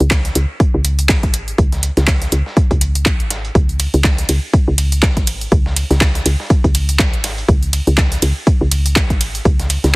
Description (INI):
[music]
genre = minimal techno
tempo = 122 BPM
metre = 4/4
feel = swing 57% on 16ths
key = unclear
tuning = A4 = 444 Hz
[part]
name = woody FM bass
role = bass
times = 0.0-10.0 s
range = G#1 to C#2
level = -16 LUFS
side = equal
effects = sidechain pumping
[part]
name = punchy analog drum machine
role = drums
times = 0.0-9.9 s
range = handclaps, hi-hat, ride cymbal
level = -19 LUFS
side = right 1 dB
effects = overdrive
[part]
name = dusty soul sampler-style drum kit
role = drums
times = 0.1-9.9 s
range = hi-hat, snare drum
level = -29 LUFS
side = right 1 dB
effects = overdrive, high-pass filter on snare, high-pass filter on hats
[part]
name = electronic kick drum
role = drums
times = 0.1-9.6 s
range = none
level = -14 LUFS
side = equal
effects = none
[sound]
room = little or no reverb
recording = heavily compressed radio sound, multiband compression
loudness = -13 LUFS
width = side -25 dB against mid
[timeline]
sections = 0.0-10.0 A section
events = none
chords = none